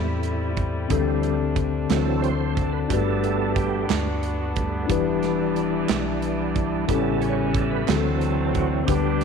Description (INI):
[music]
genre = slow gospel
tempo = 60 BPM (dotted quarters)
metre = 6/8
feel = straight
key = unclear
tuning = A4 = 440 Hz
[part]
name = mellow tine electric piano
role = accompaniment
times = 0.0-9.2 s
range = G2 to B4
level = -25 LUFS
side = left 10 dB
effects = medium stereo tremolo
[part]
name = bright tonewheel organ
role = sustained chords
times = 0.0-9.2 s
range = C#3 to C#5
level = -27 LUFS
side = right 9 dB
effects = slow rotary speaker, chorus vibrato
[part]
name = muted French horn section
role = sustained chords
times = 0.0-9.2 s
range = D3 to E4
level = -32 LUFS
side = equal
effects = none
[part]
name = metallic FM bass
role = bass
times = 0.0-9.2 s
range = E1 to E2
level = -29 LUFS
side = equal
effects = none
[part]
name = modern studio drum kit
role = drums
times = 0.2-9.2 s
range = hi-hat, kick drum, snare drum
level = -28 LUFS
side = right 4 dB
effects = none
[part]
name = group handclap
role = percussion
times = 3.9-8.2 s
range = none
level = -38 LUFS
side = right 11 dB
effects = none
[sound]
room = moderate echo chamber reverb, RT60 2.0 s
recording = 1960s-style stereo with parts hard left and right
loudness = -21 LUFS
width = side -6 dB against mid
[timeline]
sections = 0.0-9.2 A section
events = tonewheel organ solo 0.0-9.2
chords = 0.0 Am7; 0.9 D7sus4; 1.9 D7; 2.9 Gmaj7; 4.9 Em7; 6.9 A7; 7.9 D7